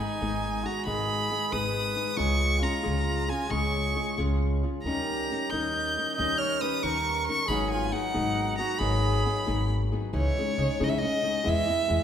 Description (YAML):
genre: mexican folk, mariachi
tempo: 91 BPM (dotted quarters)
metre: 6/8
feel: straight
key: G# dorian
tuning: A4 = 442 Hz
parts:
  - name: rich violin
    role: melody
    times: 0.0-12.0 s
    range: C#5 to G6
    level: -29 LUFS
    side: right 1 dB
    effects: none
  - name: clear trumpet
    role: second line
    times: 0.0-9.7 s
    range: D#4 to D#5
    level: -33 LUFS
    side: right 3 dB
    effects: none
  - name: flamenco guitar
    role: accompaniment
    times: 0.0-12.0 s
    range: G#2 to A#4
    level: -31 LUFS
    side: left 4 dB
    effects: none
  - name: upright bass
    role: bass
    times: 0.2-12.0 s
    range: G#1 to C#3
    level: -30 LUFS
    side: equal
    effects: none
room: wet scoring stage reverb, RT60 1.7 s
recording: minimal, uncompressed stereo recording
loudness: -25 LUFS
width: side -9 dB against mid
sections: 0.0-10.1 A section; 10.1-12.0 B section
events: none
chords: 0.0 G#m; 2.2 C#; 4.9 D#7; 7.5 G#m7; 10.1 C#madd9; 11.5 E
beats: 0.22 | 0.88 1.54 | 2.20 2.86 | 3.52 4.18 | 4.85 5.52 | 6.18 6.84 | 7.50 8.15 | 8.81 9.48 | 10.15 10.81 | 11.47